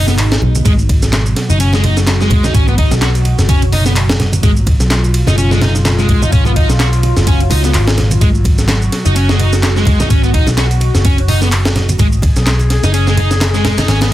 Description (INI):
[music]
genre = breakbeat, breaks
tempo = 127 BPM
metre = 4/4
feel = swing 57% on 16ths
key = G# dorian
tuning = A4 = 440 Hz
[part]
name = phased analog pad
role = sustained chords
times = 0.0-14.1 s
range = B2 to G#4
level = -21 LUFS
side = right 1 dB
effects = phaser, chorus, vintage 12-bit sampler grit, sidechain pumping
[part]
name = fuzz guitar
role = riff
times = 0.0-14.1 s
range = G#3 to F#4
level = -19 LUFS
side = equal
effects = distortion, tape echo
[part]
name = vintage muted picked electric bass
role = bass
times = 0.0-14.1 s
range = F#1 to C#2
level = -13 LUFS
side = equal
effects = none
[part]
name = breakbeat sampler-style drum kit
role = drums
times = 0.1-14.1 s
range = hi-hat, kick drum, ride cymbal, snare drum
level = -15 LUFS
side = equal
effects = none
[part]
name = electronic shaker and handclaps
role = drums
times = 0.1-14.1 s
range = none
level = -22 LUFS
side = equal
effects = none
[part]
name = congas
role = percussion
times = 0.1-14.1 s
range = none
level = -21 LUFS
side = right 2 dB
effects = none
[sound]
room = light reverb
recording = dense, heavily limited modern master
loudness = -10 LUFS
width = side -14 dB against mid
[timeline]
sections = 0.0-14.1 A section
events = none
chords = 0.0 G#m7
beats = 0.18 | 0.66 1.13 1.60 2.07 | 2.54 3.02 3.49 3.96 | 4.43 4.91 5.38 5.85 | 6.32 6.80 7.27 7.74 | 8.21 8.69 9.16 9.63 | 10.10 10.58 11.05 11.52 | 11.99 12.47 12.94 13.41 | 13.88